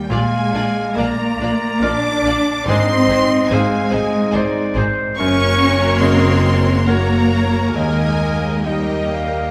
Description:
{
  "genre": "cinematic, emotional film score for orchestra",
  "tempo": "71 BPM",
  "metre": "3/4",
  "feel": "uneven beats, rubato",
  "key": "unclear",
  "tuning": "A4 = 440 Hz",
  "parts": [
    { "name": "warm symphonic violin section", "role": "melody", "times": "0.0-9.5 s", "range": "G5 to D6", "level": "-26 LUFS", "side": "equal", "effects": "none" },
    { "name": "bright concert grand piano", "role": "accompaniment", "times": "0.0-9.5 s", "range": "Eb2 to D5", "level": "-26 LUFS", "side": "equal", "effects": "none" },
    { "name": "dark French horn section", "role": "sustained chords", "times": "0.0-9.5 s", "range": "G3 to D4", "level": "-25 LUFS", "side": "equal", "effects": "none" },
    { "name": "concert harp", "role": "arpeggios", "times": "0.0-9.5 s", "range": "Gb2 to D5", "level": "-28 LUFS", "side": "equal", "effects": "none" },
    { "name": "rich symphonic cello section", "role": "bass", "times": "0.0-9.5 s", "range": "G3 to D4", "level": "-25 LUFS", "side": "equal", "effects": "none" },
    { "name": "rich symphonic violin section", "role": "second line", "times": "0.1-9.5 s", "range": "F4 to Eb5", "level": "-29 LUFS", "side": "equal", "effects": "none" },
    { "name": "warm clarinet", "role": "second line", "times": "0.1-9.5 s", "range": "Bb4 to F5", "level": "-25 LUFS", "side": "equal", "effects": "none" },
    { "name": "rich symphonic viola section", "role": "accompaniment", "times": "0.1-9.5 s", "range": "Bb3 to Bb4", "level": "-29 LUFS", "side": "equal", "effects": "none" },
    { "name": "rich symphonic double bass section", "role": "bass", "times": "0.1-9.5 s", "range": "Gb1 to Eb2", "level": "-25 LUFS", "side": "equal", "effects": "none" }
  ],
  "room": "wet scoring stage reverb, RT60 1.8 s",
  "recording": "none",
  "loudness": "-17 LUFS",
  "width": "mono",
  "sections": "0.1-9.5 A section",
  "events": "none",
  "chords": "0.1 Bb; 2.7 Ab; 5.2 Gb; 7.7 Eb"
}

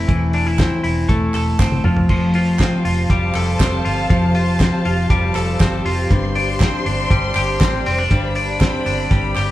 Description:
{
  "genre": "jangly indie pop",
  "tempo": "120 BPM",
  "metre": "4/4",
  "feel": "straight",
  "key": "unclear",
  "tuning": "A4 = 440 Hz",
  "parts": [
    { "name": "twelve-string electric guitar", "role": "arpeggios", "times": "0.0-9.5 s", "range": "G2 to A4", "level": "-19 LUFS", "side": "left 1 dB", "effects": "none" },
    { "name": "vintage muted fingered electric bass", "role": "bass", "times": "0.0-9.5 s", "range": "E1 to A1", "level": "-22 LUFS", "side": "right 1 dB", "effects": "none" },
    { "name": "cloth-damped thuddy drum kit", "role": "drums", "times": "0.1-9.5 s", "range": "crash cymbal, hi-hat, kick drum, ride cymbal, snare drum, toms", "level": "-19 LUFS", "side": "equal", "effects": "none" },
    { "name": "group handclap", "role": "percussion", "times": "0.6-9.5 s", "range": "none", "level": "-32 LUFS", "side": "right 4 dB", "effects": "none" },
    { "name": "warm studio string section", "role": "sustained chords", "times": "2.1-9.5 s", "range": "G4 to C6", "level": "-25 LUFS", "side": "left 1 dB", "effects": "none" }
  ],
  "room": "wet large studio reverb, RT60 1.3 s",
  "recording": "band playing live in one room",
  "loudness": "-15 LUFS",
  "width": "side -15 dB against mid",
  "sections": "0.0-9.5 A section",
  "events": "drum fill 1.6-2.1",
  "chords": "0.0 Am/E; 1.8 Fadd9; 6.1 Gsus4"
}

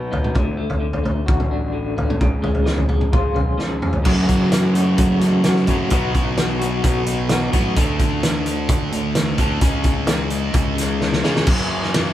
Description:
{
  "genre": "quiet-loud alternative rock",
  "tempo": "130 BPM",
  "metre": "4/4",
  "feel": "straight",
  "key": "F# harmonic minor",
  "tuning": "A4 = 440 Hz",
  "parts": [
    { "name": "electric guitar through a small old amp", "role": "arpeggios", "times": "0.0-7.8 s", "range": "F#2 to F#4", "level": "-24 LUFS", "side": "left 2 dB", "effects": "tremolo" },
    { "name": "fuzz fingered electric bass", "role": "bass", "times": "0.0-12.1 s", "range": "A1 to F#3", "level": "-25 LUFS", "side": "equal", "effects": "overdrive" },
    { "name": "loose indie drum kit", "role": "drums", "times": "0.1-12.1 s", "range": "crash cymbal, hi-hat, kick drum, ride cymbal, snare drum, toms", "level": "-19 LUFS", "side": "equal", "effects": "none" },
    { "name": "thick fuzz guitar", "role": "riff", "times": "4.0-12.1 s", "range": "F#2 to D4", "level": "-21 LUFS", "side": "equal", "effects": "distortion" }
  ],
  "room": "light reverb",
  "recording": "band playing live in one room",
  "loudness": "-16 LUFS",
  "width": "side -12 dB against mid",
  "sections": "0.0-4.1 A section; 4.1-11.5 B section",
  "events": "drum fill 3.6-4.1, 11.0-11.5",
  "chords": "0.4 D; 2.2 C#; 4.1 F#m; 5.9 B; 7.8 D5; 9.6 C#5; 11.5 F#5"
}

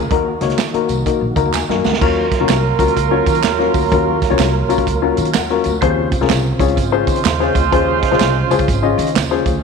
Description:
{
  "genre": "uptempo 1960s-style soul",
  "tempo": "126 BPM",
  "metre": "4/4",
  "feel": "swing 64% on 8ths",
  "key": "unclear",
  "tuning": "A4 = 439 Hz",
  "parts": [
    { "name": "percussive tonewheel organ", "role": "sustained chords", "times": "0.0-9.6 s", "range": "Db3 to Bb4", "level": "-24 LUFS", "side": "right 1 dB", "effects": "fast rotary speaker, chorus vibrato" },
    { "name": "upright bass", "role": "bass", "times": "0.0-9.6 s", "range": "Ab1 to Eb3", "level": "-20 LUFS", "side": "right 1 dB", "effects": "none" },
    { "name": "dark upright piano", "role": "accompaniment", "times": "0.1-9.5 s", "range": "Bb3 to Bb5", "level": "-17 LUFS", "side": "left 11 dB", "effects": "none" },
    { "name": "vintage drum kit", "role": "drums", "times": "0.1-9.5 s", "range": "crash cymbal, hi-hat, kick drum, snare drum", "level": "-20 LUFS", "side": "right 4 dB", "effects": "none" },
    { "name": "handclaps and tambourine", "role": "percussion", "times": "0.6-9.5 s", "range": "none", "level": "-27 LUFS", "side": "right 12 dB", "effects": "none" },
    { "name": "warm horn section", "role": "second line", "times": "2.0-9.4 s", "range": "Gb3 to C5", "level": "-20 LUFS", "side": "right 13 dB", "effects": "none" }
  ],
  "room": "moderate echo chamber reverb, RT60 2.0 s",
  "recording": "1960s-style stereo with parts hard left and right",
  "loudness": "-13 LUFS",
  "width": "side -5 dB against mid",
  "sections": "0.0-2.0 A section; 2.0-9.6 B section",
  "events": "upright piano fill 1.1-2.0, 5.1-5.8; drum fill 1.5-2.0",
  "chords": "0.1 Ebm; 2.0 Gbmaj7; 5.8 Dbmaj7"
}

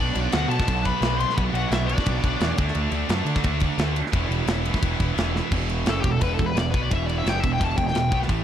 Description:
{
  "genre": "heavy metal",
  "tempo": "173 BPM",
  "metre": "4/4",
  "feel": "straight",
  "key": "unclear",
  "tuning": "A4 = 440 Hz",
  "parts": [
    { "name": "high-gain lead guitar", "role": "melody", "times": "0.0-2.5, 5.9-8.2 s", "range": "G4 to C6", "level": "-27 LUFS", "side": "left 5 dB", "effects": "distortion" },
    { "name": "high-gain lead guitar", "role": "second line", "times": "0.0-2.5 s", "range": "D4 to C5", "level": "-36 LUFS", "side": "right 3 dB", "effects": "distortion, ping-pong delay" },
    { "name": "heavy high-gain guitar", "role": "riff", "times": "0.0-8.4 s", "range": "E2 to E4", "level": "-32 LUFS", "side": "left 14 dB", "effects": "distortion" },
    { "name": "scooped high-gain guitar", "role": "riff", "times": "0.0-8.4 s", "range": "E2 to D4", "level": "-28 LUFS", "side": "right 11 dB", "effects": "distortion" },
    { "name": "fuzz picked electric bass", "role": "bass", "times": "0.0-8.4 s", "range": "E1 to D3", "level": "-26 LUFS", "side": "equal", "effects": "overdrive" },
    { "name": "tight metal drum kit", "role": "drums", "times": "0.2-8.4 s", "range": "crash cymbal, kick drum, ride cymbal, snare drum", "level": "-26 LUFS", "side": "equal", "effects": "none" }
  ],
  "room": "little or no reverb",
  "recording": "dark, warm production",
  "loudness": "-21 LUFS",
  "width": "side -10 dB against mid",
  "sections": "0.0-5.5 A section; 5.5-8.4 B section",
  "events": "drum fill 5.3; lead electric guitar solo 5.5-8.4",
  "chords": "0.0 Bm; 2.6 D5; 4.1 E5; 5.5 Em"
}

